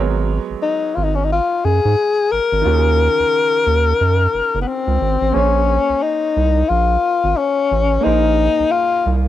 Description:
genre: R&B, neo-soul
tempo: 89 BPM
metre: 4/4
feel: swing 59% on 16ths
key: Bb minor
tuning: A4 = 440 Hz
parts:
  - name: clear grand piano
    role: accompaniment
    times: 0.0-9.3 s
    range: Db3 to Db5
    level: -26 LUFS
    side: right 10 dB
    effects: cassette tape
  - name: round analog bass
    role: bass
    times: 0.0-9.3 s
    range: Gb1 to Ab2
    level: -18 LUFS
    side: right 2 dB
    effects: none
  - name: breathy tenor saxophone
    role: melody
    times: 0.6-9.1 s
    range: Cb4 to Bb4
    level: -16 LUFS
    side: left 4 dB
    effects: cassette tape
room: light reverb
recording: home recording on cassette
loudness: -14 LUFS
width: side -12 dB against mid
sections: 0.0-5.3 A section; 5.3-9.3 B section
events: none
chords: 0.0 Abm11; 2.6 Ebm11; 5.3 Bbm9

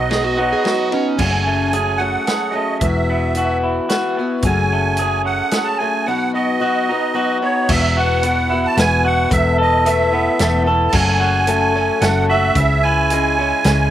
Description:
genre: folk rock and heartland rock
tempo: 111 BPM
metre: 3/4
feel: straight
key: E major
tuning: A4 = 443 Hz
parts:
  - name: musette accordion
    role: melody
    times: 0.0-13.9 s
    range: C#5 to A5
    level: -19 LUFS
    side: right 3 dB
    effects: slapback echo
  - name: picked twelve-string acoustic guitar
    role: accompaniment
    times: 0.0-13.9 s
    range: F#2 to A4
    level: -22 LUFS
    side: left 6 dB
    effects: slapback echo
  - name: reed electric piano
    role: accompaniment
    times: 0.0-1.2 s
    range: F#4 to D#5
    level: -30 LUFS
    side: right 5 dB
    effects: none
  - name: electric guitar through a small old amp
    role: riff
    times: 0.0-13.9 s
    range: E2 to A4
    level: -20 LUFS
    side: right 1 dB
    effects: slapback echo
  - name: hollow-body short-scale fingered electric bass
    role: bass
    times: 0.0-13.9 s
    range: E1 to C#2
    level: -20 LUFS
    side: equal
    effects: none
  - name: overdriven slide guitar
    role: second line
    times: 0.1-1.2 s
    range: C#4 to G#4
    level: -21 LUFS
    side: right 4 dB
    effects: none
  - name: vintage drum kit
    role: drums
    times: 0.1-13.8 s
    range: crash cymbal, hi-hat, kick drum, ride cymbal, snare drum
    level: -22 LUFS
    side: equal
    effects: none
room: little or no reverb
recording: recorded outdoors, with no room sound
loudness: -14 LUFS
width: side -12 dB against mid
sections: 0.0-1.2 A section; 1.2-7.7 B section; 7.7-13.9 C section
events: none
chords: 0.0 B; 1.2 F#madd9; 2.8 Esus2; 4.4 F#madd9; 6.1 B; 7.7 Esus2; 9.3 Asus2/E; 10.9 F#m; 12.6 C#m

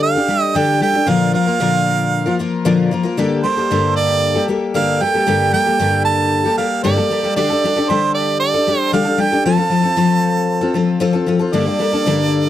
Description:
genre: rock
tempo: 115 BPM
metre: 4/4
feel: straight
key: G minor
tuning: A4 = 445 Hz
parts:
  - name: clear harmonica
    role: melody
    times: 0.0-12.5 s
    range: C5 to A5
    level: -17 LUFS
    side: right 5 dB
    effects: none
  - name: picked twelve-string acoustic guitar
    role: accompaniment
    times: 0.0-12.5 s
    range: G2 to Bb4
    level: -16 LUFS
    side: left 3 dB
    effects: none
room: light reverb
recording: dry, close 1970s-style studio recording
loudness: -14 LUFS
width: side -12 dB against mid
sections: 0.0-11.5 A section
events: none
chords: 0.0 Dsus4; 1.1 Bb; 3.2 Gmadd9; 7.4 Dsus4; 9.5 F; 11.5 Gmadd9

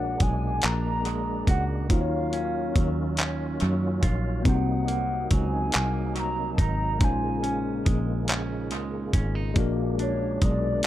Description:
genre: slow six-eight R&B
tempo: 47 BPM (dotted quarters)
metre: 6/8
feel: straight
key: Bb minor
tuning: A4 = 440 Hz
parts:
  - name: hollow clarinet-like synth lead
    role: melody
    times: 0.0-10.9 s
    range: C#5 to Bb5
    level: -31 LUFS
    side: equal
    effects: chorus, analog delay
  - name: semi-hollow electric guitar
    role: second line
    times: 0.0-10.9 s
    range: Bb2 to F#4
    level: -35 LUFS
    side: right 6 dB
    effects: none
  - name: tine electric piano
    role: accompaniment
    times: 0.0-10.9 s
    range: Gb3 to C#5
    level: -32 LUFS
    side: left 5 dB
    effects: overdrive, phaser, analog delay
  - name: tonewheel organ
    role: sustained chords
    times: 0.0-10.9 s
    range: C3 to F4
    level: -35 LUFS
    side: right 1 dB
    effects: chorus vibrato, fast rotary speaker
  - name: fingered electric bass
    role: bass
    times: 0.0-10.8 s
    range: Ab1 to Gb2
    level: -28 LUFS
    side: equal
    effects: none
  - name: dusty soul sampler-style drum kit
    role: drums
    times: 0.2-10.9 s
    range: handclaps, hi-hat, kick drum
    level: -24 LUFS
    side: equal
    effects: analog delay
room: little or no reverb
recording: echo-heavy mix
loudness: -23 LUFS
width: side -13 dB against mid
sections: 0.0-10.9 A section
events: none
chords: 0.0 Bb7alt; 1.9 Ebm9; 4.5 Cm7b5; 7.0 Bbm11; 9.6 Bb7alt

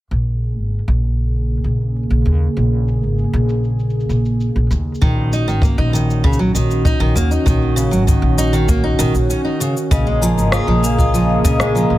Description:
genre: folktronica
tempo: 98 BPM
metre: 4/4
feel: straight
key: unclear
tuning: A4 = 440 Hz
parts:
  - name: warm analog pad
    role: sustained chords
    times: 0.1-12.0 s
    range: Db3 to Ab4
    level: -21 LUFS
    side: right 1 dB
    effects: chorus
  - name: upright bass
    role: bass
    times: 0.1-12.0 s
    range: Ab1 to Eb2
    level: -17 LUFS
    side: equal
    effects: none
  - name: electronic cabasa and rim click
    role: drums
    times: 0.1-11.9 s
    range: none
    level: -25 LUFS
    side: left 2 dB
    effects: low-pass filter on perc, low-pass filter on snare, low-pass filter on room
  - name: fingerpicked steel-string acoustic guitar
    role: arpeggios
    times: 5.0-12.0 s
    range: Db3 to F4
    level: -19 LUFS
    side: equal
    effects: ping-pong delay
  - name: kick drum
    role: drums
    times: 5.0-11.6 s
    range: none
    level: -17 LUFS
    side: equal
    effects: none
  - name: vibraphone with medium hard mallets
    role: second line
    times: 9.9-12.0 s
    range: Eb5 to Eb6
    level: -21 LUFS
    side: left 4 dB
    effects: vintage 12-bit sampler grit, ping-pong delay
room: small room ambience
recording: none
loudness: -14 LUFS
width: side -15 dB against mid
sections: 0.1-9.9 A section; 9.9-12.0 B section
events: filter sweep on drum 0.1-9.9; filter sweep on analog synth pad 0.1-9.9; break 9.3-9.9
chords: 0.1 Bbm7; 5.0 Ebm7; 9.9 Bbm7

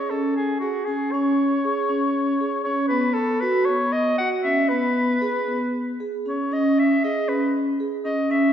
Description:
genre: contemporary instrumental, chamber music in an uneven meter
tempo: 234 BPM (eighths)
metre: 7/8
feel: straight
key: C# minor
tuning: A4 = 442 Hz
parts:
  - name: mellow soprano saxophone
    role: melody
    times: 0.0-8.5 s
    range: F#4 to F#5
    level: -24 LUFS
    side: left 1 dB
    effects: none
  - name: vibraphone with soft mallets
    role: arpeggios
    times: 0.0-8.5 s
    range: B3 to G#4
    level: -22 LUFS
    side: equal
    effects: none
room: wet scoring stage reverb, RT60 1.9 s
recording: recorded in a church or concert hall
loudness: -20 LUFS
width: side -9 dB against mid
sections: 0.0-8.5 A section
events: none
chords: 0.0 C#5; 2.9 B5; 4.7 G#m/B; 6.5 C#5

